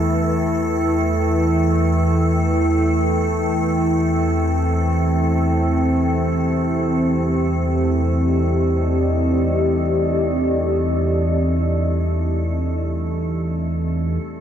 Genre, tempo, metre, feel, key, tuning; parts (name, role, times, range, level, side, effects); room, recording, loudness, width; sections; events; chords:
dark ambient drone; free time; A4 = 438 Hz
dark analog pad; sustained chords; 0.0-14.2 s; C4 to G5; -22 LUFS; equal; chorus
analog drone; drone; 0.0-14.4 s; E2 to E3; -19 LUFS; equal; chorus
icy glass pad; texture; 0.0-14.3 s; A3 to A4; -26 LUFS; right 2 dB; chorus, built-in reverb
moderate huge ambient reverb, RT60 7.6 s; dark, warm production; -17 LUFS; side -9 dB against mid
0.0-14.2 A section
0.0 Em; 4.0 Cm